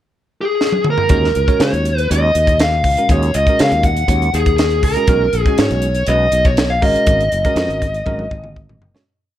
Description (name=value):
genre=electric jazz fusion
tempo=120 BPM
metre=4/4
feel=straight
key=Eb minor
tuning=A4 = 440 Hz
part: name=smooth overdriven lead guitar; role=melody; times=0.4-8.6 s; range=Ab4 to Gb5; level=-16 LUFS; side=left 1 dB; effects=none
part: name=crisp fusion drum kit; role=drums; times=0.6-9.1 s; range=hi-hat, kick drum, snare drum, toms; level=-18 LUFS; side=equal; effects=none
part: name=bell-like tine electric piano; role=accompaniment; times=1.1-9.0 s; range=Ab3 to Db5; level=-23 LUFS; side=right 3 dB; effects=none
part: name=sustaining fretless electric bass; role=bass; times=1.1-8.9 s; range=Gb1 to Db3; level=-18 LUFS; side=equal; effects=none
room=light reverb, small room ambience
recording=none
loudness=-13 LUFS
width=side -12 dB against mid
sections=0.0-1.1 pickup bar; 1.1-9.1 A section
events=drum fill 0.6-1.1, 8.1-9.1; fade-out 7.1-9.1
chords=0.0 N.C.; 1.1 Ebm7; 5.1 Bsus2; 6.8 Ab9sus4